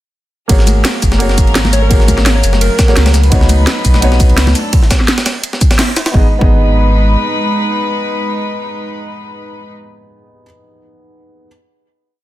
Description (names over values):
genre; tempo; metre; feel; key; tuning
liquid drum and bass; 170 BPM; 4/4; swing 54% on 16ths; G# minor; A4 = 440 Hz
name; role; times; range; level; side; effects
felt-muted upright piano; accompaniment; 0.5-11.5 s; A#3 to D#5; -20 LUFS; equal; dub echo
warm studio string section; sustained chords; 0.5-9.7 s; F#3 to B4; -20 LUFS; left 1 dB; sidechain pumping
warm sub bass; bass; 0.5-7.2 s; F#1 to C#2; -12 LUFS; equal; none
breakbeat sampler-style drum kit; drums; 0.5-6.1 s; hi-hat, ride cymbal, snare drum; -19 LUFS; right 1 dB; high-pass filter on cymbals, high-pass filter on snare, high-pass filter on hats
electronic kick drum; drums; 0.5-6.5 s; none; -12 LUFS; equal; none
garage drum kit; drums; 0.5-6.0 s; hi-hat, rim click, shaker, snare drum; -16 LUFS; equal; overdrive
congas; percussion; 0.7-4.5 s; none; -22 LUFS; left 3 dB; none
soft struck synth lead; melody; 1.7-3.1 s; A#4 to C#5; -21 LUFS; left 1 dB; chorus, dub echo
room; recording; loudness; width
digital ambience; dense, heavily limited modern master; -9 LUFS; side -15 dB against mid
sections
0.5-6.1 drop; 6.1-9.0 final chord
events
drop 0.5-6.1; band accent 5.8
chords
0.5 G#9sus4; 3.1 C#9sus4; 4.6 F#m; 6.1 G#m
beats
| 0.49 0.85 1.20 1.55 | 1.91 2.26 2.61 2.96 | 3.32 3.67 4.02 4.38 | 4.73 5.08 5.44 5.79 | 6.14 6.50 6.85 7.20 | 7.55 7.91 8.26 8.61